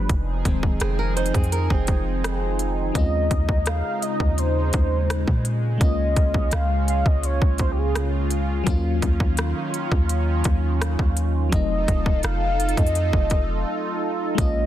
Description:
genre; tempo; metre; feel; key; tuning
contemporary R&B; 84 BPM; 4/4; straight; unclear; A4 = 438 Hz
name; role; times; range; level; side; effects
FM electric piano with auto-pan; accompaniment; 0.0-14.7 s; Eb3 to F4; -31 LUFS; left 6 dB; none
warm analog pad; sustained chords; 0.0-14.7 s; Db3 to A4; -29 LUFS; right 2 dB; chorus, sidechain pumping
warm 808-style bass; bass; 0.0-14.7 s; Eb1 to Bb2; -23 LUFS; equal; none
trap drum kit; drums; 0.1-14.5 s; hi-hat, kick drum, rim click; -23 LUFS; equal; none
flamenco guitar; arpeggios; 0.8-2.7 s; C4 to C5; -29 LUFS; right 5 dB; digital delay
warm velvety synth lead; melody; 3.0-14.7 s; G4 to F5; -27 LUFS; equal; chorus, digital delay
room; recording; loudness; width
little or no reverb; dense, heavily limited modern master; -20 LUFS; side -12 dB against mid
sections
0.0-3.0 A section; 3.0-14.4 B section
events
break 13.7-14.4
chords
0.1 Fm7; 3.0 Eb13sus4; 5.8 Bbm7/Db; 8.7 Ebm9; 11.5 F7b9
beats
| 0.10 0.81 1.52 2.24 | 2.95 3.67 4.38 5.10 | 5.81 6.53 7.24 7.95 | 8.67 9.38 10.10 10.81 | 11.53 12.24 12.95 13.67 | 14.38

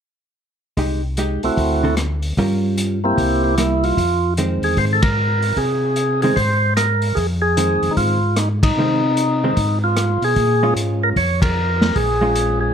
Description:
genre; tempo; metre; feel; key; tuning
soul jazz organ trio; 150 BPM; 4/4; swing 64% on 8ths; F minor; A4 = 440 Hz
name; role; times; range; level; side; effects
hollow-body jazz guitar; accompaniment; 0.8-12.7 s; D3 to Bb4; -22 LUFS; right 2 dB; none
mellow tonewheel organ; bass; 0.8-12.7 s; Bb1 to C3; -20 LUFS; equal; slow rotary speaker
vintage drum kit; drums; 0.8-12.5 s; hi-hat, kick drum, ride cymbal, rim click, snare drum; -23 LUFS; equal; none
percussive tonewheel organ; melody; 1.4-12.7 s; A3 to Db5; -18 LUFS; equal; slow rotary speaker, plate reverb
room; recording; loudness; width
moderate club reverb, RT60 0.8 s; none; -16 LUFS; side -8 dB against mid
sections
0.8-4.0 A section; 4.0-12.7 B section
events
band accent 5.0, 8.6, 11.4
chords
0.8 Cm6; 1.6 D7; 2.4 Gm7b5; 3.2 C7; 4.0 Fm7; 10.4 Bbm7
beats
| 0.77 1.17 1.57 1.97 | 2.37 2.77 3.17 3.57 | 3.97 4.37 4.77 5.17 | 5.57 5.97 6.37 6.77 | 7.17 7.57 7.97 8.37 | 8.77 9.17 9.57 9.97 | 10.37 10.77 11.16 11.56 | 11.96 12.36

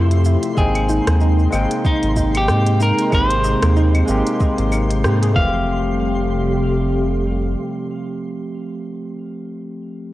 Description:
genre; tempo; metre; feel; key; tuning
sunset chillout; 94 BPM; 4/4; swing 57% on 16ths; unclear; A4 = 441 Hz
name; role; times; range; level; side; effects
overdriven tine electric piano; accompaniment; 0.0-10.1 s; F3 to G5; -23 LUFS; moving between left 4 dB and right 4 dB; auto-pan, ping-pong delay
soft string machine; sustained chords; 0.0-8.9 s; C3 to G5; -25 LUFS; equal; ensemble chorus
soft round pluck; arpeggios; 0.0-6.0 s; E3 to Eb5; -27 LUFS; right 1 dB; chorus, ping-pong delay
round analog bass; bass; 0.0-7.6 s; F1 to Ab2; -18 LUFS; equal; none
twinkling granular texture; texture; 0.0-5.7 s; C6; -37 LUFS; right 1 dB; built-in reverb
smooth R&B drum kit; drums; 0.1-5.3 s; claves, hi-hat, rim click, shaker; -27 LUFS; equal; studio reverb
clean electric guitar; melody; 0.6-8.9 s; Eb4 to F5; -24 LUFS; left 1 dB; tape echo
electronic kick drum; drums; 0.6-5.5 s; none; -19 LUFS; equal; studio reverb
room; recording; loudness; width
light reverb; worn, warbling old tape, cassette tape, warbly pitch drift; -15 LUFS; side -16 dB against mid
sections
0.0-5.7 A section; 5.7-8.2 B section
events
band accent 5.0-5.4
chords
0.0 Fmaj9; 0.6 Abmaj9; 5.4 Fmaj9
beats
| 0.57 1.21 1.85 2.49 | 3.13 3.76 4.40 5.04 | 5.68 6.32 6.96 7.59

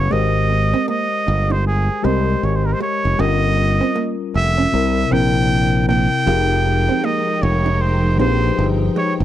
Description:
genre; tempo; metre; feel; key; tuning
R&B; 78 BPM; 4/4; swing 61% on 16ths; Ab major; A4 = 439 Hz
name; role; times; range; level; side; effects
trumpet with straight mute; melody; 0.0-9.1 s; Ab4 to G5; -21 LUFS; right 2 dB; slapback echo
mellow tine electric piano; accompaniment; 0.0-9.2 s; C3 to Eb5; -22 LUFS; left 7 dB; none
modern bright fingered electric bass; bass; 0.0-9.2 s; F1 to C2; -18 LUFS; right 1 dB; none
hollow-body jazz guitar; second line; 0.1-9.1 s; Ab3 to G4; -24 LUFS; right 8 dB; none
warm studio string section; sustained chords; 6.3-9.2 s; F3 to G5; -27 LUFS; right 3 dB; none
room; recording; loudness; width
little or no reverb; dry, close 1970s-style studio recording; -15 LUFS; side -12 dB against mid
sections
0.1-9.2 A section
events
none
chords
0.1 Abmaj9; 3.2 Gm7b5; 4.7 C7; 6.3 Fm11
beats
| 0.10 0.87 1.64 2.41 | 3.18 3.95 4.72 5.49 | 6.26 7.03 7.79 8.56

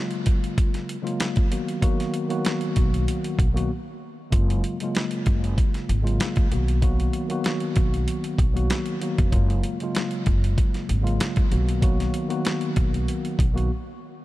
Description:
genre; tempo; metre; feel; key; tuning
hip hop, boom-bap hip-hop; 96 BPM; 4/4; swing 54% on 16ths; unclear; A4 = 440 Hz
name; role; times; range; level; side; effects
mellow tine electric piano; accompaniment; 0.0-13.7 s; C#3 to F#4; -27 LUFS; left 1 dB; medium stereo tremolo, cassette tape, high-pass filter, low-pass filter
dusty soul sampler-style drum kit; drums; 0.1-13.7 s; hi-hat, kick drum, snare drum; -23 LUFS; equal; none
upright bass; bass; 2.8-13.7 s; E#1 to B1; -24 LUFS; equal; none
room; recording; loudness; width
light reverb; none; -21 LUFS; side -16 dB against mid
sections
0.0-14.2 A section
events
break 0.0-1.8, 3.7-4.3, 13.7-14.2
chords
0.0 F#maj9; 1.5 Bmaj7; 4.3 F#maj9; 6.5 Bmaj7; 9.3 F#maj9; 11.5 Bmaj7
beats
0.58 1.20 | 1.83 2.45 3.08 3.70 | 4.33 4.95 5.58 6.20 | 6.83 7.45 8.08 8.70 | 9.33 9.95 10.58 11.20 | 11.83 12.45 13.08 13.70

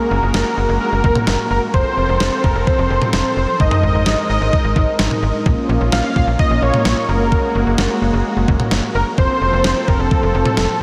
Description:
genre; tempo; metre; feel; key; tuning
synth-pop; 129 BPM; 4/4; straight; unclear; A4 = 440 Hz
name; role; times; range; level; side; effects
unison lead; melody; 0.0-10.8 s; A4 to F5; -22 LUFS; equal; analog delay
brassy analog pad; sustained chords; 0.0-10.8 s; F3 to Bb4; -24 LUFS; equal; chorus
slap-like FM bass; bass; 0.1-10.8 s; F1 to Bb1; -21 LUFS; equal; none
clean 12-bit digital drum machine; drums; 0.3-10.7 s; kick drum, snare drum, toms; -21 LUFS; equal; none
room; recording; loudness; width
wet huge ambient reverb, RT60 7.7 s; dreamy mix soaked in reverb; -16 LUFS; mono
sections
0.0-10.8 A section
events
none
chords
0.0 Gbadd9; 1.7 F; 3.6 Absus2; 5.5 Bbm; 7.1 Gbadd9; 9.2 F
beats
0.34 0.81 1.27 | 1.74 2.20 2.67 3.13 | 3.60 4.06 4.53 4.99 | 5.46 5.92 6.39 6.86 | 7.32 7.79 8.25 8.71 | 9.18 9.65 10.11 10.58

